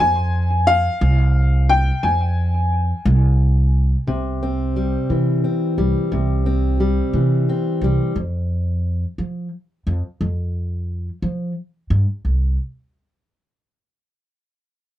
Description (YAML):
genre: indie folk with a building arrangement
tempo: 59 BPM (dotted quarters)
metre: 6/8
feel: straight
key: C major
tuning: A4 = 440 Hz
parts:
  - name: warm upright piano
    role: melody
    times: 0.0-3.4 s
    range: F5 to Ab5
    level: -20 LUFS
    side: left 2 dB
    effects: tape echo
  - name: upright bass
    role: bass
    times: 0.0-12.6 s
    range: C2 to F3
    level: -18 LUFS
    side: right 1 dB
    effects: none
  - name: fingerpicked plugged-in steel-string acoustic guitar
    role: accompaniment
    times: 4.1-8.2 s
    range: C3 to C4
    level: -20 LUFS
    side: left 1 dB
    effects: none
room: studio reverb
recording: dry, close 1970s-style studio recording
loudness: -17 LUFS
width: side -13 dB against mid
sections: 0.0-4.1 A section; 4.1-12.2 B section; 12.2-14.3 C section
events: none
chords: 0.0 Fm; 4.1 C; 8.2 N.C.